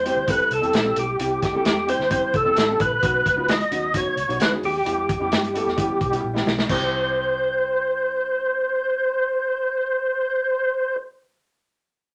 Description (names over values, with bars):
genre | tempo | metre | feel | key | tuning
uptempo 1960s-style soul | 131 BPM | 4/4 | straight | C major | A4 = 439 Hz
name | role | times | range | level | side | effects
percussive tonewheel organ | melody | 0.0-11.0 s | G4 to D#5 | -23 LUFS | equal | overdrive, chorus vibrato, slow rotary speaker
warm upright piano | accompaniment | 0.0-11.0 s | F#3 to A4 | -31 LUFS | equal | none
vintage muted fingered electric bass | bass | 0.0-11.0 s | A1 to E3 | -36 LUFS | equal | none
vintage drum kit | drums | 0.1-6.8 s | china cymbal, hi-hat, kick drum, snare drum | -27 LUFS | equal | none
room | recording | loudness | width
wet studio ambience, RT60 0.5 s | none | -22 LUFS | mono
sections
0.0-6.7 A section; 6.7-10.4 B section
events
drum fill 6.2-6.7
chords
0.0 C; 3.0 B; 4.9 Em; 6.7 C